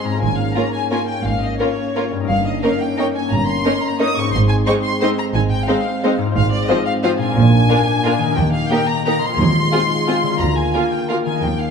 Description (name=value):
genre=classical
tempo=176 BPM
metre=3/4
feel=uneven beats, rubato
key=Ab major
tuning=A4 = 440 Hz
part: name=rich symphonic violin section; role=melody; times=0.0-11.7 s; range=Db5 to Eb6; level=-22 LUFS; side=left 2 dB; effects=none
part: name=warm French horn section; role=sustained chords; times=0.0-11.7 s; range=Ab3 to F4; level=-24 LUFS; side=left 1 dB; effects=none
part: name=concert harp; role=arpeggios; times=0.0-11.7 s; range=G2 to C5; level=-24 LUFS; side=left 6 dB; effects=none
part: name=clear symphonic cello section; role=bass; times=0.2-11.7 s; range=D2 to Bb2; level=-22 LUFS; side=right 3 dB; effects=none
part: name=rich symphonic double bass section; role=bass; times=0.2-11.7 s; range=G1 to Eb2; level=-20 LUFS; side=right 4 dB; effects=none
part: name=rich symphonic violin section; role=second line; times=0.6-11.2 s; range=Eb4 to C5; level=-24 LUFS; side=left 3 dB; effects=none
part: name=rich symphonic viola section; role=accompaniment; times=0.6-11.2 s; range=F3 to F4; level=-24 LUFS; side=right 2 dB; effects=none
part: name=timpani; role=percussion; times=9.4-9.9 s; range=Eb3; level=-25 LUFS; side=equal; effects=none
room=wet scoring stage reverb, RT60 1.7 s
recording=minimal, uncompressed stereo recording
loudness=-15 LUFS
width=side -6 dB against mid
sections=0.0-11.7 A section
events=none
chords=0.2 Bbm7/Ab; 2.3 Eb7/G; 4.3 Ab; 6.4 Fm/Ab; 7.4 Bb; 8.4 Eb; 9.4 Fm7/Eb; 10.4 Bb7/D